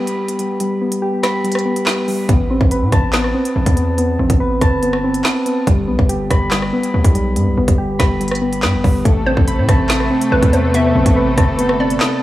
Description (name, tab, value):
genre	hip hop, drill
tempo	142 BPM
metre	4/4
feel	half-time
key	A minor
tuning	A4 = 440 Hz
part	soft electric-piano-like synth keys	arpeggios	0.0-12.2 s	G3 to B5	-17 LUFS	left 1 dB	chorus, tape echo
part	drill drum kit	drums	0.1-12.1 s	handclaps, hi-hat, kick drum, rim click, snare drum	-17 LUFS	equal	none
part	distorted 808-style bass	bass	2.3-12.0 s	G1 to A2	-19 LUFS	equal	distortion
part	rich symphonic string section	sustained chords	9.1-12.2 s	C3 to A4	-21 LUFS	right 1 dB	none
part	hollow square pluck	second line	9.3-12.2 s	B4 to E5	-22 LUFS	right 1 dB	chorus, tape echo
room	moderate church reverb, RT60 3.3 s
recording	dreamy mix soaked in reverb, small room ambience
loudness	-13 LUFS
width	side -15 dB against mid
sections	0.0-9.1 A section; 9.1-12.2 B section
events	break 0.0-2.3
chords	0.0 G; 2.3 Amadd9; 5.7 G; 9.1 Amadd9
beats	0.18 | 0.60 1.02 1.45 1.87 | 2.29 2.71 3.14 3.56 | 3.98 4.40 4.83 5.25 | 5.67 6.09 6.52 6.94 | 7.36 7.79 8.21 8.63 | 9.05 9.47 9.90 10.32 | 10.74 11.16 11.59 12.01